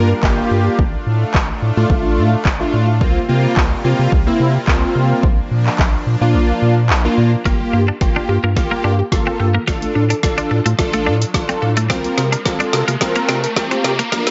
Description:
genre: dance-pop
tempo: 108 BPM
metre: 4/4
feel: straight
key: unclear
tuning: A4 = 443 Hz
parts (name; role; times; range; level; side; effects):
- big bright polysynth; accompaniment; 0.0-14.3 s; A3 to Bb4; -21 LUFS; equal; analog chorus, sidechain pumping
- supersaw pad; sustained chords; 0.0-7.4 s; C3 to Bb4; -28 LUFS; equal; sidechain pumping
- round analog bass; bass; 0.0-14.3 s; G1 to C3; -20 LUFS; equal; sidechain pumping
- deep house drum kit; drums; 0.2-14.3 s; handclaps, hi-hat, kick drum, snare drum; -20 LUFS; equal; none
- unison pluck; arpeggios; 7.5-14.3 s; G3 to Bb4; -28 LUFS; equal; none
- twelve-string electric guitar; riff; 7.5-14.2 s; A3 to F4; -24 LUFS; equal; analog chorus
- riser; sound effects; 9.6-14.3 s; none; -30 LUFS; equal; none
room: light reverb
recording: high-pass filter, nothing above 7.8 kHz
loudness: -16 LUFS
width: mono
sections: 0.0-7.5 A section; 7.5-14.3 B section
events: kick muted 6.3-7.5; build-up 7.5-14.3; drum fill 7.5-14.3; filter sweep 7.5-14.3; riser 9.6-14.3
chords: 0.0 Gm7; 0.8 F6/A; 3.0 C7sus4; 5.2 Bb; 7.5 Gm7; 9.7 F6/A; 11.9 C7sus4

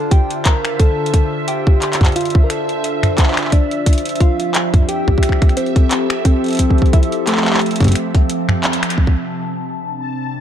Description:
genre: IDM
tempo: 88 BPM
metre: 4/4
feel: swing 56% on 16ths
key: unclear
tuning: A4 = 440 Hz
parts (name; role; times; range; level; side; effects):
- soft struck synth lead; melody; 0.0-8.6 s; A3 to Bb4; -21 LUFS; equal; chorus, cassette tape, digital delay
- warbly tape-like pad; sustained chords; 0.0-10.4 s; C3 to F5; -21 LUFS; equal; chorus, built-in reverb, phaser
- bubbling stepped-filter texture; texture; 0.0-10.4 s; E5 to A5; -30 LUFS; right 4 dB; chorus, built-in reverb, sidechain pumping
- booming analog drum machine; drums; 0.1-9.0 s; finger snaps, handclaps, hi-hat, toms; -20 LUFS; equal; none
- electronic kick drum; drums; 0.1-9.2 s; none; -12 LUFS; equal; none
room: digital ambience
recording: dark, warm production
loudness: -13 LUFS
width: side -10 dB against mid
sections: 0.0-9.0 A section; 9.0-10.4 B section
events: break 8.3-9.0; drum fill 8.6-9.0; band accent 8.6-9.0; filter sweep on ambient pad 9.0-10.4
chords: 0.0 Dm7; 3.5 Fmaj7; 9.0 Csus4

